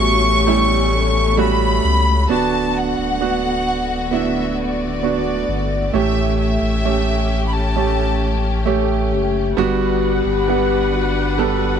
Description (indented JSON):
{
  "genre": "pop ballad",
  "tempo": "66 BPM",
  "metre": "4/4",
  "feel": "straight",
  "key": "D major",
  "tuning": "A4 = 440 Hz",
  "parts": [
    { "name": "warm studio violin section", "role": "melody", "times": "0.0-8.4 s", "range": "D5 to C#6", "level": "-21 LUFS", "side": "left 1 dB", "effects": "none" },
    { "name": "dark French horn section", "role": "second line", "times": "0.0-2.3, 8.7-11.8 s", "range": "F#4 to A4", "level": "-23 LUFS", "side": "left 16 dB", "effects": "slapback echo" },
    { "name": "warm concert grand piano", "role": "accompaniment", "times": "0.0-11.8 s", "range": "G2 to F#5", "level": "-20 LUFS", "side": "right 9 dB", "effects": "none" },
    { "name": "warm studio string section", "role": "sustained chords", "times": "0.0-11.8 s", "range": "D3 to F#5", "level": "-25 LUFS", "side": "left 3 dB", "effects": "none" },
    { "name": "saturated sub bass", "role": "bass", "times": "0.0-11.8 s", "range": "D1 to C#2", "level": "-21 LUFS", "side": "left 2 dB", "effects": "none" }
  ],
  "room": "light reverb, studio ambience",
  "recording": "1960s-style stereo with parts hard left and right",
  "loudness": "-15 LUFS",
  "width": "side -8 dB against mid",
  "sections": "0.0-2.3 A section; 2.3-11.8 B section",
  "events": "none",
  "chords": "0.0 A7; 2.3 D6; 5.9 A7; 9.6 Gmaj7"
}